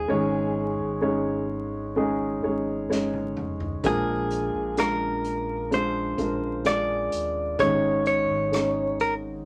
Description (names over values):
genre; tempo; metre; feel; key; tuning
pop ballad; 64 BPM; 4/4; straight; unclear; A4 = 439 Hz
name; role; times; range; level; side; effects
direct-recorded clean electric guitar; melody; 0.0-9.1 s; Ab4 to D5; -28 LUFS; equal; none
dark grand piano; accompaniment; 0.0-9.5 s; Ab2 to Db5; -28 LUFS; equal; none
sub bass with octave; bass; 0.0-9.5 s; Eb1 to Bb1; -40 LUFS; equal; none
unplugged drum kit; drums; 2.9-9.2 s; hi-hat, kick drum, rim click, snare drum, toms; -38 LUFS; equal; none
room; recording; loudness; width
moderate club reverb, RT60 0.6 s; vinyl crackle; -26 LUFS; mono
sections
0.0-9.5 A section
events
drum fill 2.9-3.8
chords
0.1 Absus4; 3.8 Bb7; 7.6 Absus4